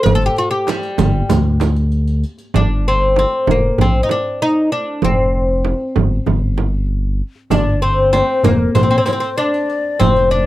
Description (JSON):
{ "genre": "Arabic maqam ensemble", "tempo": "96 BPM", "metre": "4/4", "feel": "straight", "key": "unclear", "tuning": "A4 = 440 Hz", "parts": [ { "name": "oud", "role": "melody", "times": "0.0-10.5 s", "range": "G3 to Bb4+50c", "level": "-17 LUFS", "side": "left 1 dB", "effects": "none" }, { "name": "smooth synth bass", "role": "bass", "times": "0.1-10.5 s", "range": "F1 to D2", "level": "-17 LUFS", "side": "equal", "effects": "none" }, { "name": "darbuka", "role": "percussion", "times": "0.1-10.4 s", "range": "none", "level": "-22 LUFS", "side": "left 2 dB", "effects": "none" }, { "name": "frame drum", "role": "percussion", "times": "0.1-10.2 s", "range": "none", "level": "-20 LUFS", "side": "right 7 dB", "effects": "none" }, { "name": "riq", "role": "percussion", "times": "0.1-2.5, 7.5-10.4 s", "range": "none", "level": "-28 LUFS", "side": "equal", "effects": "none" }, { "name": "breathy mellow low ney", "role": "second line", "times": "7.5-10.5 s", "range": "Bb4 to Eb5", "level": "-21 LUFS", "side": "left 5 dB", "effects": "none" } ], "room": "little or no reverb", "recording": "dry, close 1970s-style studio recording", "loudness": "-13 LUFS", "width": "side -15 dB against mid", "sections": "0.0-2.5 A section; 2.5-10.5 B section", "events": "none", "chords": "none" }